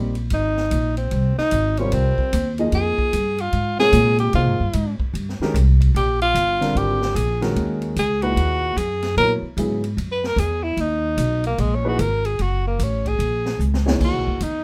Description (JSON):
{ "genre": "modal jazz", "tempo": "149 BPM", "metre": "4/4", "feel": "swing 64% on 8ths", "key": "Eb phrygian from 7.6 s", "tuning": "A4 = 440 Hz", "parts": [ { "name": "dark baby grand piano", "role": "accompaniment", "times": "0.0-14.4 s", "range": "Bb2 to Eb5", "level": "-27 LUFS", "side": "equal", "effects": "none" }, { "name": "upright bass", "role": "bass", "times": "0.0-14.6 s", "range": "Gb1 to C3", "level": "-23 LUFS", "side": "equal", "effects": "none" }, { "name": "swinging big-band drum kit", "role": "drums", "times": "0.1-14.5 s", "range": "crash cymbal, hi-hat, kick drum, ride cymbal, snare drum", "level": "-32 LUFS", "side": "equal", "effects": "none" }, { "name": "clear tenor saxophone", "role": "melody", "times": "0.3-14.6 s", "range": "Ab3 to Cb5", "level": "-24 LUFS", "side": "equal", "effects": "none" } ], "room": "moderate club reverb, RT60 0.6 s", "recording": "none", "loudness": "-20 LUFS", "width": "mono", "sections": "0.0-7.6 A section; 7.6-14.6 A section", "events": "tenor saxophone solo 0.0-14.6; drum fill 13.6-14.0", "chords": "0.0 Cm7 (rootless); 1.1 Fmadd9; 5.9 Bb7; 7.6 Ebm7; 14.0 B" }